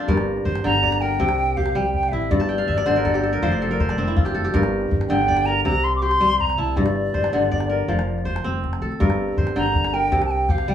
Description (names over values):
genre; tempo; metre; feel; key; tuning
west african traditional, West African string and xylophone music; 108 BPM (dotted quarters); 12/8; straight; G dorian; A4 = 440 Hz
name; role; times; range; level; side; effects
kora; arpeggios; 0.0-10.7 s; G2 to A5; -22 LUFS; equal; none
upright bass; bass; 0.1-10.7 s; F1 to D2; -26 LUFS; equal; none
calabash; percussion; 0.1-10.7 s; none; -25 LUFS; left 1 dB; none
mellow hollow silver concert flute; melody; 0.6-10.7 s; D5 to D6; -22 LUFS; equal; plate reverb
room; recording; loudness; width
wet studio ambience, RT60 0.5 s; heard from further back in the room, small room ambience; -18 LUFS; side -9 dB against mid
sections
0.1-10.7 A section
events
kora fill 2.4-4.5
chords
0.1 Gm; 1.2 C; 2.3 G5; 3.4 F5; 4.5 Gm; 5.7 C; 6.8 Gm; 7.9 F; 9.0 Gm; 10.1 C5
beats
| 0.08 0.64 1.20 1.75 | 2.31 2.87 3.42 3.98 | 4.54 5.09 5.65 6.21 | 6.77 7.33 7.89 8.45 | 9.00 9.56 10.12 10.68